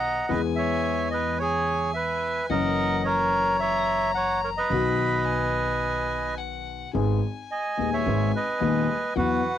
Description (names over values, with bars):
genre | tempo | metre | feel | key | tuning
tango | 109 BPM | 4/4 | rubato | B major | A4 = 440 Hz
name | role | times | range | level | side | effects
bandoneon | melody | 0.0-9.6 s | F#4 to G#5 | -25 LUFS | right 3 dB | none
warm violin | second line | 0.0-9.6 s | F#5 to B5 | -33 LUFS | left 6 dB | cassette tape
warm concert grand piano | accompaniment | 0.0-9.4 s | D#1 to G#4 | -28 LUFS | left 6 dB | cassette tape
upright bass | bass | 0.0-9.4 s | F#1 to E2 | -32 LUFS | right 3 dB | none
room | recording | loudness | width
wet booth ambience, RT60 0.2 s | home recording on cassette | -22 LUFS | side -10 dB against mid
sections
0.0-6.9 A section; 6.9-9.6 B section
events
none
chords
0.3 E; 2.5 F#7; 4.7 B; 6.9 G#m